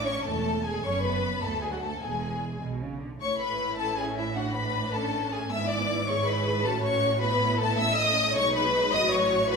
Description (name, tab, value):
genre	quick classical-period movement for string orchestra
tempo	105 BPM (dotted quarters)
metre	6/8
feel	straight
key	A major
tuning	A4 = 442 Hz
part	warm studio violin section	melody	0.0-9.6 s	E5 to E6	-29 LUFS	left 4 dB	none
part	warm studio violin section	second line	0.0-9.6 s	E4 to E5	-28 LUFS	left 2 dB	none
part	warm studio viola section	accompaniment	0.0-9.6 s	F#3 to G#4	-33 LUFS	right 4 dB	none
part	warm studio cello section	bass	0.0-9.6 s	D2 to D3	-35 LUFS	right 3 dB	none
part	warm studio double bass section	bass	0.0-9.6 s	E1 to D2	-35 LUFS	right 3 dB	none
room	wet recital hall reverb, RT60 1.4 s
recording	recorded in a church or concert hall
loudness	-24 LUFS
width	side -5 dB against mid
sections	0.0-3.2 A section; 3.2-9.6 B section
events	none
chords	0.0 A5; 0.8 F#sus4; 1.4 D; 2.0 E; 3.2 A; 4.4 Bm7/A; 5.5 E7/G#; 6.6 A; 8.4 B; 8.9 A6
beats	0.26 | 0.84 1.43 | 2.02 2.62 | 3.21 3.79 | 4.36 4.93 | 5.51 6.08 | 6.65 7.21 | 7.79 8.36 | 8.93 9.50